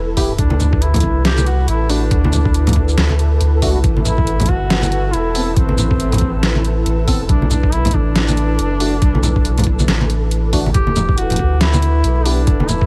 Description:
deep dubstep; 139 BPM; 4/4; swing 58% on 16ths, half-time; E minor; A4 = 440 Hz
dark analog pad; sustained chords; 0.0-12.9 s; E4 to B4; -29 LUFS; equal; chorus
soft dub sub bass; bass; 0.0-12.9 s; E1 to D2; -19 LUFS; equal
flickering grainy texture; texture; 0.0-12.9 s; A4; -32 LUFS; equal; built-in reverb
percussive organ stab; stabs; 0.2-12.4 s; A3 to A4; -30 LUFS; equal
dubstep drum kit; drums; 0.2-12.8 s; hi-hat, shaker, snare drum; -23 LUFS; equal; overdrive
electronic kick drum; drums; 0.2-12.9 s; -20 LUFS; equal
warm duduk; melody; 0.4-12.9 s; C4 to G4; -25 LUFS; equal; dub echo
congas; percussion; 0.5-12.8 s; -23 LUFS; equal
digital ambience; vinyl crackle; -15 LUFS; mono
0.0-12.9 A section
0.4 D; 3.8 Amadd9; 7.3 Bm7; 10.7 Em
| 0.39 0.82 1.25 1.68 | 2.11 2.54 2.98 3.41 | 3.84 4.27 4.70 5.13 | 5.57 6.00 6.43 6.86 | 7.29 7.72 8.16 8.59 | 9.02 9.45 9.88 10.31 | 10.75 11.18 11.61 12.04 | 12.47

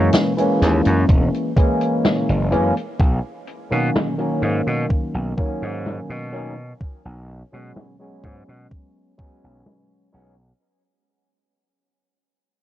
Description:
vaporwave; 63 BPM; 4/4; straight; A4 = 440 Hz
barky tine electric piano; accompaniment; 0.0-10.3 s; D#3 to C#4; -21 LUFS; equal; overdrive, lush chorus, analog delay
gritty slap bass; bass; 0.0-10.5 s; E1 to B2; -21 LUFS; equal; overdrive, tube saturation, low-pass filter
open jazz drum kit; drums; 0.1-10.6 s; hi-hat, snare drum; -22 LUFS; equal; low-pass filter on hats, vintage 12-bit sampler grit, low-pass filter on snare, low-pass filter on room
electronic kick drum; drums; 1.1-9.4 s; -17 LUFS; equal; vintage 12-bit sampler grit
studio reverb; worn, warbling old tape, cassette tape, warbly pitch drift; -17 LUFS; side -13 dB against mid
0.0-10.6 A section
fade-out 0.0-10.6; filter sweep on slap bass 0.0-10.6
0.0 F#9; 3.0 Bmaj9; 6.8 F#sus24/B
0.14 1.09 2.04 | 2.99 3.94 4.90 5.85 | 6.80 7.75 8.71 9.66

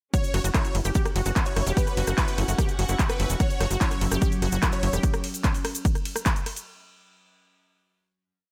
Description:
psychedelic trance; 147 BPM; 4/4; straight; A4 = 440 Hz
dense compressed supersaw; melody; 0.1-4.9 s; B4 to C#5; -37 LUFS; equal; phaser, sidechain pumping, digital delay
unison pluck; riff; 0.1-5.0 s; E4 to G5; -36 LUFS; equal; sidechain pumping, tape echo
electronic kick drum; drums; 0.1-6.3 s; -27 LUFS; equal; overdrive
techno drum kit; drums; 0.1-6.6 s; handclaps, hi-hat, ride cymbal, rim click; -34 LUFS; equal; overdrive
cabasa; percussion; 0.1-6.6 s; -38 LUFS; equal
clear studio string section; texture; 0.1-5.0 s; C#4 to C#6; -39 LUFS; equal; sidechain pumping
tight sequencer bass; bass; 0.3-5.0 s; E1 to F#1; -28 LUFS; equal
formant-sweep wobble bass; second line; 1.3-2.5 s; F#3 to B3; -45 LUFS; equal
evolving wavetable pad; sustained chords; 3.9-5.1 s; F#3 to C#4; -36 LUFS; equal; chorus, built-in reverb, phaser, sidechain pumping
light reverb, digital ambience; -25 LUFS; mono
0.1-6.7 drop
drop 0.1-6.7
0.1 F#5
| 0.14 0.54 0.95 1.36 | 1.77 2.18 2.58 2.99 | 3.40 3.81 4.22 4.63 | 5.03 5.44 5.85 6.26

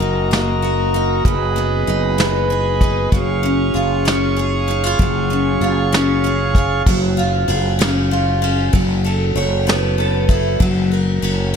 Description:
six-eight pop ballad; 64 BPM (dotted quarters); 6/8; straight; A4 = 440 Hz
picked steel-string acoustic guitar; accompaniment; 0.0-11.6 s; F#3 to C#5; -19 LUFS; equal; double-tracked left and right
pipe organ, foundations; sustained chords; 0.0-6.8 s; F#4 to C#6; -21 LUFS; right 2 dB
sustaining fretless electric bass; bass; 0.0-11.6 s; F#1; -20 LUFS; equal
soft brush drum kit; drums; 0.3-11.4 s; crash cymbal, hi-hat, kick drum, ride cymbal, snare drum; -20 LUFS; equal
moderate plate reverb, RT60 2.1 s; dreamy mix soaked in reverb; -14 LUFS; side -7 dB against mid
0.0-6.9 A section; 6.9-11.6 B section
0.0 D#m/F#; 1.3 G#m/F#; 3.1 C#/F#; 8.7 Aadd9/F#; 10.6 F#
0.32 | 1.26 2.19 | 3.13 4.06 | 5.00 5.93 | 6.87 7.80 | 8.73 9.67 | 10.60 11.54

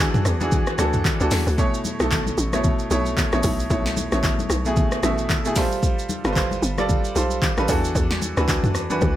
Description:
amapiano; 113 BPM; 4/4; swing 58% on 16ths; A4 = 440 Hz
bright grand piano; accompaniment; 0.0-9.2 s; B2 to E5; -24 LUFS; right 1 dB
tight log drum bass; bass; 0.0-9.2 s; G1 to E2; -24 LUFS; equal
deep house drum kit; drums; 0.1-9.2 s; handclaps, hi-hat, kick drum, rim click, shaker, snare drum, toms; -23 LUFS; equal
congas; percussion; 0.1-9.2 s; -30 LUFS; left 3 dB
little or no reverb; -19 LUFS; side -13 dB against mid
0.0-9.2 A section
0.0 E9sus4; 1.6 B9sus4; 5.6 G9sus4; 7.7 E9sus4
0.52 1.05 | 1.58 2.11 2.64 3.17 | 3.71 4.24 4.77 5.30 | 5.83 6.36 6.89 7.42 | 7.95 8.48 9.02

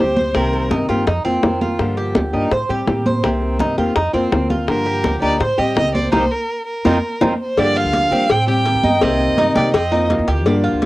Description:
latin, Cuban son and guajira; 166 BPM; 4/4; straight; A4 = 440 Hz
warm violin; melody; 0.0-0.7, 4.7-10.1 s; Bb4 to G5; -20 LUFS; right 1 dB; cassette tape
nylon-string guitar; accompaniment; 0.0-10.9 s; C3 to G4; -20 LUFS; left 2 dB; cassette tape
Cuban tres; arpeggios; 0.0-10.9 s; C4 to D5; -21 LUFS; right 2 dB; cassette tape
upright bass; bass; 0.0-10.9 s; C2 to G3; -23 LUFS; equal
congas; percussion; 0.2-10.9 s; -23 LUFS; right 1 dB
bongos and cowbell; percussion; 0.3-10.9 s; -21 LUFS; left 4 dB
light reverb; home recording on cassette; -15 LUFS; side -17 dB against mid
0.0-7.6 A section; 7.6-10.9 B section
band accent 6.1-7.6
0.3 Cm7; 1.1 F7sus4; 1.8 Gm7; 2.5 Am7b5; 3.2 Cm7; 4.0 F7sus4; 4.7 Gm7; 5.4 Am7b5; 6.1 Cm7; 6.8 F7sus4; 7.6 Gm7; 8.3 Am7b5; 9.0 Cm7; 9.7 F7sus4
| 0.35 0.71 1.07 1.43 | 1.79 2.15 2.52 2.88 | 3.24 3.60 3.96 4.32 | 4.68 5.04 5.41 5.77 | 6.13 6.49 6.85 7.21 | 7.57 7.93 8.29 8.65 | 9.02 9.38 9.74 10.10 | 10.46 10.82

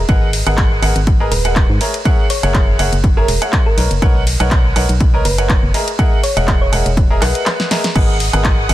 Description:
piano house; 122 BPM; 4/4; swing 54% on 16ths; G# minor; A4 = 440 Hz
thumb-piano-like synth pluck; melody; 0.0-7.9 s; A#4 to C#5; -24 LUFS; equal; chorus, ping-pong delay
organ-like FM bass; bass; 0.0-8.7 s; D#1 to G#2; -17 LUFS; equal; sidechain pumping
clear grand piano; riff; 0.1-8.7 s; G#4 to A#5; -19 LUFS; right 1 dB; sidechain pumping, ping-pong delay
electronic kick drum; drums; 0.1-8.6 s; -14 LUFS; equal; small room ambience
house drum kit; drums; 0.1-8.7 s; crash cymbal, handclaps, hi-hat, ride cymbal, snare drum; -21 LUFS; equal; small room ambience
string machine, violins; sustained chords; 8.0-8.7 s; F#5 to D#6; -25 LUFS; equal; ensemble chorus, sidechain pumping
little or no reverb; dense, heavily limited modern master; -12 LUFS; side -14 dB against mid
0.0-8.7 A section
drum fill 7.5-8.0
0.1 G#m9; 1.8 F#9; 3.8 Bmaj9; 5.7 Emaj9#11; 8.0 G#m9
| 0.09 0.58 1.07 1.56 | 2.05 2.55 3.04 3.53 | 4.02 4.51 5.00 5.50 | 5.99 6.48 6.97 7.46 | 7.96 8.45

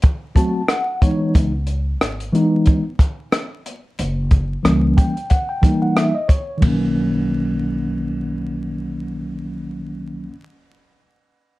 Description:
hip hop, jazz-hop; 91 BPM; 4/4; swing 57% on 16ths; B major; A4 = 440 Hz
compact cocktail drum kit; drums; 0.0-6.8 s; hi-hat, kick drum, ride cymbal, rim click; -16 LUFS; equal
mellow tine electric piano; accompaniment; 0.4-10.3 s; D#3 to A5; -19 LUFS; equal; medium stereo tremolo
upright bass; bass; 1.4-10.3 s; F#1 to C#2; -24 LUFS; equal
moderate studio reverb, RT60 0.6 s; dark, warm production, vinyl crackle; -16 LUFS; side -18 dB against mid
0.0-6.6 A section; 6.6-9.3 B section
tine electric piano fill 0.0-1.3, 4.6-6.6
0.0 G#7b9; 1.3 C#m9; 4.0 F#7b9; 6.6 Bmaj9
0.03 0.69 | 1.35 2.01 2.67 3.33 | 3.99 4.64 5.30 5.96 | 6.62 7.28 7.94 8.60

